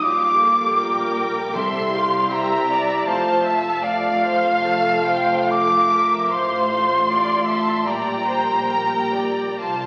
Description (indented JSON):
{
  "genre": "classical",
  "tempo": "62-80 BPM",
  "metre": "4/4",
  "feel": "rubato",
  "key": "F major",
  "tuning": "A4 = 440 Hz",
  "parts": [
    { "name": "warm symphonic violin section", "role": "melody", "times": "0.0-9.9 s", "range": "E5 to A5", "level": "-32 LUFS", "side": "equal", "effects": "none" },
    { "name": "bright symphonic violin section", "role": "second line", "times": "0.0-9.9 s", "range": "F5 to D6", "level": "-30 LUFS", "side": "equal", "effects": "none" },
    { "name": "mellow silver concert flute", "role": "second line", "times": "0.0-9.9 s", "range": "F5 to D6", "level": "-22 LUFS", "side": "equal", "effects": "none" },
    { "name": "clear symphonic viola section", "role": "accompaniment", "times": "0.0-9.9 s", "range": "G4 to E5", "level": "-29 LUFS", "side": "equal", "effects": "none" },
    { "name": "dark French horn section", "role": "sustained chords", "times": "0.0-9.9 s", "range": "G3 to G4", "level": "-29 LUFS", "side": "equal", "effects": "none" },
    { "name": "dark symphonic cello section", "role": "bass", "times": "0.0-9.9 s", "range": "F2 to C3", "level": "-35 LUFS", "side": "equal", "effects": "none" },
    { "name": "warm studio double bass section", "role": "bass", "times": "0.0-9.9 s", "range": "F1 to C2", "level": "-39 LUFS", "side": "equal", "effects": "none" },
    { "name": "timpani", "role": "percussion", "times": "1.6-2.7 s", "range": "C3", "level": "-40 LUFS", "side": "equal", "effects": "none" }
  ],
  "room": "wet scoring stage reverb, RT60 1.5 s",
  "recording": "very old 78 rpm record, vinyl crackle",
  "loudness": "-20 LUFS",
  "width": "mono",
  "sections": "0.0-9.9 A section",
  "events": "none",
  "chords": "0.0 Gm7/Bb; 1.6 C; 3.1 F; 6.3 F/A; 7.9 Gm/Bb"
}